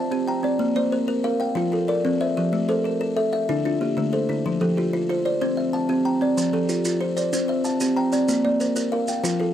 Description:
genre	southern african traditional, mbira-style interlocking cycle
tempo	125 BPM (dotted quarters)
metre	12/8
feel	straight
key	F major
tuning	A4 = 439 Hz
part	buzzing kalimba	arpeggios	0.0-9.5 s	D3 to Bb5	-23 LUFS	left 4 dB	none
part	kalimba	arpeggios	0.0-9.5 s	D3 to G5	-24 LUFS	right 4 dB	none
part	maracas	percussion	6.4-9.4 s	none	-31 LUFS	right 3 dB	none
room	light reverb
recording	dry, close 1970s-style studio recording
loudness	-20 LUFS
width	side -10 dB against mid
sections	0.0-9.5 A section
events	none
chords	0.0 C; 0.6 Bb; 1.6 F; 2.5 Am; 3.5 Dm; 4.5 F; 5.4 C; 6.4 F; 7.3 C; 8.3 Bb

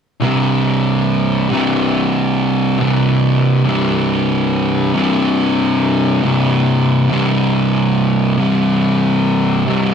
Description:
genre	metal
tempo	70 BPM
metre	4/4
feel	straight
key	unclear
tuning	A4 = 440 Hz
part	fuzz guitar	solo	0.2-9.9 s	C2 to C3	-13 LUFS	equal	distortion
room	moderate studio ambience, RT60 0.5 s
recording	rough rehearsal-room recording, tube saturation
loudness	-13 LUFS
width	side -7 dB against mid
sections	0.2-9.9 A section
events	none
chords	0.2 C5

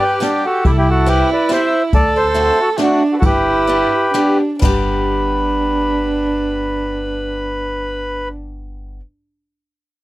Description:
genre	musette waltz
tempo	123-142 BPM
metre	3/4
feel	swing 54% on 8ths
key	G major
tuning	A4 = 440 Hz
part	accordion	melody	0.0-8.3 s	D4 to E5	-17 LUFS	left 1 dB	none
part	dark violin	second line	0.0-8.3 s	D4 to A4	-19 LUFS	right 3 dB	slapback echo
part	picked swing-style acoustic guitar	accompaniment	0.0-9.0 s	G3 to G4	-25 LUFS	left 3 dB	none
part	jazz brush drum kit	drums	0.2-4.7 s	crash cymbal, kick drum, ride cymbal, snare drum	-18 LUFS	equal	none
part	upright bass	bass	0.6-9.0 s	G1 to D2	-22 LUFS	equal	none
room	light reverb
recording	dry, close 1970s-style studio recording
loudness	-14 LUFS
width	side -17 dB against mid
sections	0.0-4.6 A section; 4.6-7.5 B section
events	slowing down 1.9-4.6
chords	0.0 G; 0.7 C; 1.9 D7; 3.2 G

